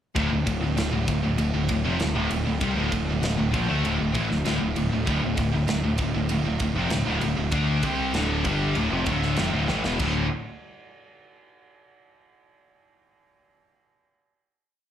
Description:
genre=heavy metal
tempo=98 BPM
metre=4/4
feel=straight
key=D minor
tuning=A4 = 440 Hz
part: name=scooped high-gain guitar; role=riff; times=0.2-10.3 s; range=D2 to D4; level=-29 LUFS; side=right 8 dB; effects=distortion
part: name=sludgy distorted guitar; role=riff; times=0.2-10.3 s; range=D2 to D4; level=-27 LUFS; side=left 5 dB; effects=overdrive, slapback echo
part: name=tight distorted guitar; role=riff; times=0.2-10.3 s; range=D2 to D4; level=-31 LUFS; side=equal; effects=distortion, slapback echo
part: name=growling picked electric bass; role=bass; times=0.2-10.3 s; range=D1 to D2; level=-28 LUFS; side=equal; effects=overdrive
part: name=tight metal drum kit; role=drums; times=0.2-10.1 s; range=crash cymbal, kick drum, ride cymbal, snare drum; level=-31 LUFS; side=right 1 dB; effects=none
room=light reverb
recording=live gig heard through the venue's PA, club reverb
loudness=-22 LUFS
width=side -10 dB against mid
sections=0.2-10.0 riff; 10.0-12.5 final chord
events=drum fill 9.7-10.0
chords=0.2 Dm; 10.0 D5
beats=| 0.16 0.78 1.39 2.00 | 2.62 3.23 3.84 4.45 | 5.07 5.68 6.30 6.91 | 7.53 8.14 8.76 9.38 | 10.00

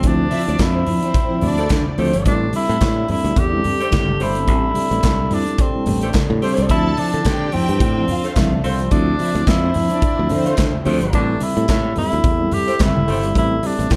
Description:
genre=disco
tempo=108 BPM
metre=4/4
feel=swing 56% on 16ths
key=D minor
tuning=A4 = 442 Hz
part: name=warm tenor saxophone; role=melody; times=0.0-14.0 s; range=A3 to G4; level=-25 LUFS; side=equal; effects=slapback echo
part: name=mellow electric guitar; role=accompaniment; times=0.0-13.9 s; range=F3 to G4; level=-26 LUFS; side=equal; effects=none
part: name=mellow French horn section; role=sustained chords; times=0.0-14.0 s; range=C3 to E4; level=-31 LUFS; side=equal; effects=none
part: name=modern bright fingered electric bass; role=bass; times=0.0-14.0 s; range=G1 to D3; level=-23 LUFS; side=equal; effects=none
part: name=modern studio drum kit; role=drums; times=0.0-14.0 s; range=handclaps, hi-hat, kick drum, snare drum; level=-23 LUFS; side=equal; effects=none
part: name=warm studio string section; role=second line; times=0.3-1.9, 6.7-10.8 s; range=C4 to A5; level=-29 LUFS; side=equal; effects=none
part: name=congas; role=percussion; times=0.3-14.0 s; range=none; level=-29 LUFS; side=equal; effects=none
part: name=mellow horn section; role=stabs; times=1.6-13.3 s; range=F3 to C5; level=-28 LUFS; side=equal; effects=slapback echo
room=light reverb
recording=dark, warm production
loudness=-18 LUFS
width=mono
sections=0.0-14.0 A section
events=none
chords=0.0 Dm9; 2.3 Am7; 6.7 Dm9; 11.1 D7sus2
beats=| 0.04 0.60 1.15 1.71 | 2.26 2.81 3.37 3.92 | 4.48 5.03 5.59 6.14 | 6.70 7.25 7.81 8.36 | 8.91 9.47 10.02 10.58 | 11.13 11.69 12.24 12.80 | 13.35 13.91

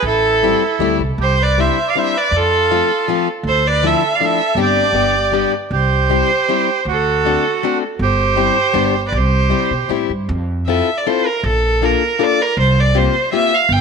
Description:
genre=musette waltz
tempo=159 BPM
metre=3/4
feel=rubato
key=C major, F major from 10.3 s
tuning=A4 = 440 Hz
part: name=rich violin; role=melody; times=0.0-13.8 s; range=A4 to G5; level=-17 LUFS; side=right 1 dB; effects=none
part: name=accordion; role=second line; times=0.0-9.9 s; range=E4 to D5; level=-20 LUFS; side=right 13 dB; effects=none
part: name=upright bass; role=bass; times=0.0-13.8 s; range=G1 to B2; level=-19 LUFS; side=right 1 dB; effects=none
part: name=fingerpicked plugged-in steel-string acoustic guitar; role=accompaniment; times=0.4-13.5 s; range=F3 to A4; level=-20 LUFS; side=left 14 dB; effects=none
room=light reverb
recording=1960s-style stereo with parts hard left and right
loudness=-13 LUFS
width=side -5 dB against mid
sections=0.0-1.2 A section; 1.2-10.3 B section; 10.3-13.8 C section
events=none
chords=0.0 Am7; 1.2 Cadd9; 2.3 F; 3.4 Dmadd9; 4.6 Gsus4; 4.9 G; 5.7 C; 6.9 D7; 8.0 C/G; 8.8 G; 9.1 C; 10.3 Fmaj7; 11.5 Bbmaj7; 12.6 C7sus4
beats=| 0.04 0.42 0.80 | 1.19 1.57 1.95 | 2.32 2.70 3.07 | 3.45 3.82 4.19 | 4.57 4.95 5.33 | 5.72 6.10 6.49 | 6.86 7.24 7.62 | 8.00 8.37 8.75 | 9.13 9.52 9.91 | 10.30 10.69 11.07 | 11.45 11.83 12.20 | 12.58 12.95 13.33 | 13.71

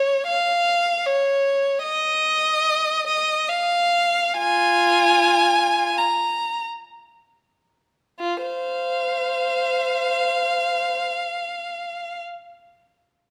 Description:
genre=classical, free, expressive piece for unaccompanied violin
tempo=32-78 BPM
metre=3/4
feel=rubato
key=F minor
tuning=A4 = 440 Hz
part: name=rich violin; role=solo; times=0.0-12.2 s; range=F4 to Bb5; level=-21 LUFS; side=equal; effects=none
room=moderate recital hall reverb, RT60 1.5 s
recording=none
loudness=-21 LUFS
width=mono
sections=0.0-8.2 A section; 8.2-12.1 B section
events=slowing down 0.7-8.2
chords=none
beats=0.26 1.05 | 1.82 2.64 3.48 | 4.38 5.40 6.62 | 8.20 9.50 10.80

